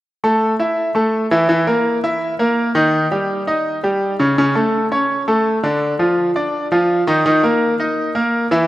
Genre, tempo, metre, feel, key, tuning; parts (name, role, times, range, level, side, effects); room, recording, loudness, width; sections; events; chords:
latin; 167 BPM; 4/4; straight; A4 = 440 Hz
bright grand piano; solo; 0.2-8.7 s; C#3 to E5; -14 LUFS; equal
moderate lush hall reverb, RT60 2.7 s; rough home demo mix; -14 LUFS; side -15 dB against mid
0.1-8.7 A section
0.1 Esus4; 1.5 Eb5; 2.9 Eb; 4.4 A; 5.8 Dm; 7.3 Eb5